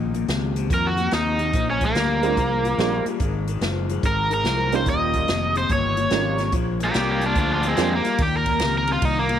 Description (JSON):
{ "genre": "electric blues shuffle", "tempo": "144 BPM", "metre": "4/4", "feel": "swing 66% on 8ths", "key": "Eb mixolydian", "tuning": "A4 = 440 Hz", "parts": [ { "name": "electric guitar through a small old amp", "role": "riff", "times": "0.0-9.4 s", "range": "Eb2 to G3", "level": "-27 LUFS", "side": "left 11 dB", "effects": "none" }, { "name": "fingered electric bass", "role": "bass", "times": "0.0-9.4 s", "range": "Eb1 to F2", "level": "-26 LUFS", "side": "right 1 dB", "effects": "none" }, { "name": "swinging big-band drum kit", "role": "drums", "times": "0.1-9.4 s", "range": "hi-hat, kick drum, ride cymbal, snare drum", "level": "-27 LUFS", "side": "equal", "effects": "none" }, { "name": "crunchy overdriven guitar", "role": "melody", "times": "0.7-9.4 s", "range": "Ab3 to Eb5", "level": "-23 LUFS", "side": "right 1 dB", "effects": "none" }, { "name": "honky-tonk upright piano", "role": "accompaniment", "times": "2.2-8.0 s", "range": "G3 to F4", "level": "-27 LUFS", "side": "right 12 dB", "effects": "none" } ], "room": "light reverb, studio reverb", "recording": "1960s-style stereo with parts hard left and right", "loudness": "-19 LUFS", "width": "side -9 dB against mid", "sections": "0.0-8.2 A section; 8.2-9.4 A section", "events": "overdriven electric guitar solo 0.0-9.4", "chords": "0.0 Eb7(no3); 1.5 Bb7; 3.2 Ab7; 4.9 Eb7; 6.5 Bb7; 8.2 Eb7(no3)", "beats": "0.29 0.70 1.12 | 1.54 1.95 2.37 2.79 | 3.20 3.62 4.04 4.45 | 4.87 5.28 5.70 6.11 | 6.53 6.95 7.36 7.78 | 8.19 8.61 9.02" }